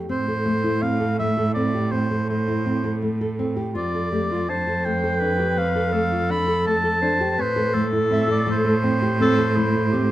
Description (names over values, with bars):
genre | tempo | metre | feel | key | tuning
contemporary instrumental, chamber music in an uneven meter | 165 BPM | 5/4 | straight | unclear | A4 = 440 Hz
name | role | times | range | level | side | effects
nylon-string guitar | arpeggios | 0.0-10.1 s | A3 to A4 | -25 LUFS | left 1 dB | none
rich cello | bass | 0.0-10.1 s | F2 to A2 | -24 LUFS | right 2 dB | none
warm oboe | melody | 0.1-10.1 s | C5 to B5 | -25 LUFS | equal | none
warm clarinet | second line | 3.7-10.1 s | E4 to C5 | -25 LUFS | left 2 dB | none
room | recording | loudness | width
light reverb | close, detailed microphones | -19 LUFS | side -14 dB against mid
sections
0.0-10.1 A section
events
none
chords
0.1 Am; 3.8 F6; 7.4 Am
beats
| 0.09 0.45 0.82 1.18 1.55 | 1.91 2.28 2.65 3.02 3.39 | 3.76 4.12 4.49 4.85 5.22 | 5.58 5.94 6.30 6.66 7.02 | 7.38 7.75 8.11 8.47 8.84 | 9.21 9.57 9.93